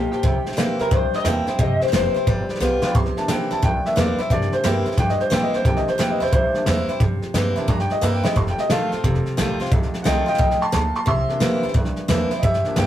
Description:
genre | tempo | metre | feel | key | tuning
rockabilly | 177 BPM | 4/4 | swing 65% on 8ths | C mixolydian | A4 = 442 Hz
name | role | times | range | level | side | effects
electric guitar through a small old amp | melody | 0.0-2.3 s | G4 to G5 | -23 LUFS | left 3 dB | analog delay
clear upright piano | accompaniment | 0.0-12.9 s | E3 to C6 | -24 LUFS | equal | none
picked steel-string acoustic guitar | accompaniment | 0.0-12.9 s | F2 to F4 | -24 LUFS | equal | none
upright bass | bass | 0.0-12.9 s | F1 to Bb2 | -25 LUFS | equal | none
soft brush drum kit | drums | 0.1-12.9 s | hi-hat, kick drum, snare drum | -22 LUFS | equal | none
room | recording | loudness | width
moderate booth ambience, RT60 0.2 s | rough rehearsal-room recording | -18 LUFS | side -12 dB against mid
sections
0.0-2.9 A section; 2.9-12.9 B section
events
drum fill 2.6-2.9, 8.0-8.4; upright piano solo 2.9-12.9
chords
0.2 C7; 2.3 G7; 2.9 C7; 8.4 F7; 11.1 C7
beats
| 0.24 0.58 0.92 1.25 | 1.59 1.93 2.27 2.61 | 2.95 3.29 3.62 3.96 | 4.30 4.64 4.98 5.32 | 5.65 5.99 6.33 6.67 | 7.01 7.35 7.68 8.02 | 8.36 8.70 9.04 9.38 | 9.72 10.05 10.39 10.73 | 11.07 11.41 11.75 12.09 | 12.43 12.77

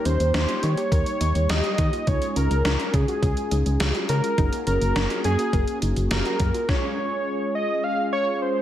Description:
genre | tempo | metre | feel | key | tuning
synth-pop | 104 BPM | 4/4 | straight | Db major | A4 = 441 Hz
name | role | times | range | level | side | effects
wide unison lead | melody | 0.0-8.6 s | Ab4 to F5 | -26 LUFS | equal | none
mellow synth brass | accompaniment | 0.0-8.6 s | G3 to Ab4 | -29 LUFS | left 1 dB | chorus
soft round pluck | arpeggios | 0.1-6.7 s | Db4 to Bb4 | -34 LUFS | right 2 dB | chorus, tape echo
solid FM bass | bass | 0.1-6.5 s | Gb1 to Eb3 | -23 LUFS | equal | none
gated 80s digital drum machine | drums | 0.1-6.8 s | hi-hat, kick drum, snare drum | -26 LUFS | equal | gated reverb, gated reverb snare
room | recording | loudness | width
light reverb, digital ambience | none | -20 LUFS | side -11 dB against mid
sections
0.0-8.6 A section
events
none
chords
0.0 Eb; 2.1 Db; 4.4 Gbadd9; 6.7 Db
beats
0.34 0.92 1.50 | 2.07 2.65 3.23 3.80 | 4.38 4.96 5.54 6.11 | 6.69 7.27 7.84 8.42

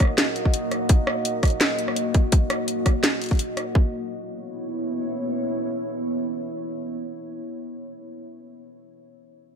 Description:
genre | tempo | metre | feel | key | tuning
half-time drum and bass | 168 BPM | 4/4 | swing 54% on 16ths, half-time | C# dorian | A4 = 438 Hz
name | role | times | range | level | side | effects
deep dark ambient pad | sustained chords | 0.0-7.4 s | A#3 to D#5 | -27 LUFS | equal | chorus, built-in reverb, vintage 12-bit sampler grit, sidechain pumping
drum and bass drum kit | drums | 0.0-3.6 s | hi-hat, rim click, snare drum | -24 LUFS | equal | none
electronic kick drum | drums | 0.0-3.8 s | none | -18 LUFS | equal | overdrive
room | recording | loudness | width
light reverb | none | -22 LUFS | side -7 dB against mid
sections
0.0-3.7 A section; 3.7-6.6 B section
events
none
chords
0.0 D#m; 3.7 C#m7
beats
0.18 0.54 | 0.89 1.25 1.61 1.96 | 2.32 2.68 3.04 3.39 | 3.75 4.11 4.46 4.82 | 5.18 5.54 5.89 6.25

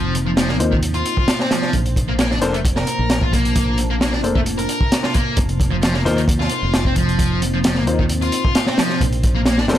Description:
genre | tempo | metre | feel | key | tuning
breakbeat, breaks | 132 BPM | 4/4 | straight | F mixolydian | A4 = 440 Hz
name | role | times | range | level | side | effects
deep dark ambient pad | sustained chords | 0.0-9.8 s | Bb3 to A5 | -26 LUFS | left 1 dB | chorus, built-in reverb, sidechain pumping
sludgy distorted guitar | riff | 0.0-9.6 s | Eb3 to Bb4 | -22 LUFS | equal | overdrive, tube saturation, tape echo
fingered electric bass | bass | 0.0-9.8 s | F1 to Eb2 | -21 LUFS | equal | none
crunchy breakbeat drum kit | drums | 0.1-9.8 s | hi-hat, kick drum, snare drum | -19 LUFS | equal | none
dark grand piano | stabs | 0.6-9.8 s | Bb3 to C5 | -25 LUFS | left 3 dB | vintage 12-bit sampler grit, tape echo
room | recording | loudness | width
light reverb | none | -16 LUFS | side -12 dB against mid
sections
0.0-9.8 A section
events
none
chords
0.0 F7sus4; 1.7 Bbmaj9; 5.4 F7sus4; 9.0 Bbmaj9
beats
0.37 0.83 1.28 | 1.74 2.19 2.65 3.10 | 3.55 4.01 4.46 4.92 | 5.37 5.83 6.28 6.74 | 7.19 7.64 8.10 8.55 | 9.01 9.46

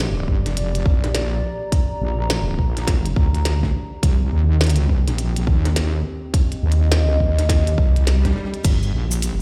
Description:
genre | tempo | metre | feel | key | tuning
glitch hop | 104 BPM | 4/4 | swing 62% on 16ths | G minor | A4 = 440 Hz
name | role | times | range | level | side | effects
wobble bass | bass | 0.0-9.4 s | F1 to Eb2 | -21 LUFS | equal | chorus
warbly tape-like pad | texture | 0.0-9.4 s | C4 to Bb5 | -32 LUFS | equal | chorus, built-in reverb, sidechain pumping
electronic kick drum | drums | 0.3-8.8 s | none | -21 LUFS | equal | none
glitchy drum kit | drums | 0.5-9.4 s | crash cymbal, hi-hat, snare drum | -28 LUFS | equal | none
swell | sound effects | 7.8-8.6 s | none | -34 LUFS | equal | none
maracas | percussion | 8.6-9.4 s | none | -32 LUFS | equal | none
room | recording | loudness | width
digital ambience | played on a big sound system in a bare room, stone room reverb | -19 LUFS | mono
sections
0.0-9.4 A section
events
swell 7.8-8.6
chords
0.0 Gm; 4.0 Cm7; 8.6 Gm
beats
0.57 1.15 | 1.72 2.30 2.88 3.45 | 4.03 4.61 5.18 5.76 | 6.34 6.92 7.49 8.07 | 8.65 9.22

